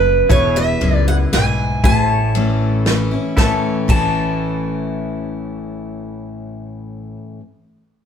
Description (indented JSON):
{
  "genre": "honky-tonk and classic country",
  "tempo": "117 BPM",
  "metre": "3/4",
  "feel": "straight",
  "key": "A major",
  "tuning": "A4 = 438 Hz",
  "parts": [
    { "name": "picked steel-string acoustic guitar", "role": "melody", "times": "0.0-7.2 s", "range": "B4 to A5", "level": "-19 LUFS", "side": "right 1 dB", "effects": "none" },
    { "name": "picked steel-string acoustic guitar", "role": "accompaniment", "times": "0.0-7.4 s", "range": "E2 to E4", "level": "-21 LUFS", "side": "left 2 dB", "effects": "none" },
    { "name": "pedal steel guitar", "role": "sustained chords", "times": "0.0-6.7 s", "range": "E4 to C#5", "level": "-28 LUFS", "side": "right 1 dB", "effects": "none" },
    { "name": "upright bass", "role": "bass", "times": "0.0-7.2 s", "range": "E1 to C#2", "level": "-22 LUFS", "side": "equal", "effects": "none" },
    { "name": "unplugged drum kit", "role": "drums", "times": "0.3-4.0 s", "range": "crash cymbal, kick drum, ride cymbal, snare drum", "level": "-20 LUFS", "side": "equal", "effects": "none" }
  ],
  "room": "moderate stone room reverb, RT60 1.3 s",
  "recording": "band playing live in one room",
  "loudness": "-14 LUFS",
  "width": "side -8 dB against mid",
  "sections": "0.0-3.4 A section; 3.4-6.5 B section",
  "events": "none",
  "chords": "0.3 E; 1.8 A"
}